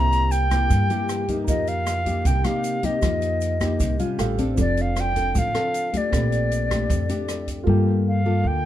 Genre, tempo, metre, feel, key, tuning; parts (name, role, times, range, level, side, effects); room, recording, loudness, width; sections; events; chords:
bossa nova; 155 BPM; 4/4; straight; Bb major; A4 = 442 Hz
reedy silver concert flute; melody; 0.0-8.7 s; D5 to Bb5; -25 LUFS; left 1 dB
nylon-string guitar; accompaniment; 0.0-8.7 s; F2 to A4; -26 LUFS; left 3 dB
warm concert grand piano; accompaniment; 0.0-8.7 s; C4 to G5; -33 LUFS; right 5 dB
upright bass; bass; 0.0-8.7 s; F1 to G2; -23 LUFS; right 1 dB
open jazz drum kit; drums; 0.1-7.6 s; hi-hat, kick drum, rim click; -28 LUFS; right 1 dB
egg shaker; percussion; 0.1-7.7 s; -41 LUFS; right 11 dB
little or no reverb; dark, warm production; -20 LUFS; side -12 dB against mid
0.0-7.7 A section
grand piano fill 3.8-4.6
0.0 C7; 1.5 F9sus4; 4.2 A7alt; 4.6 Dm7/F; 6.1 Bbmaj13; 7.7 Gm9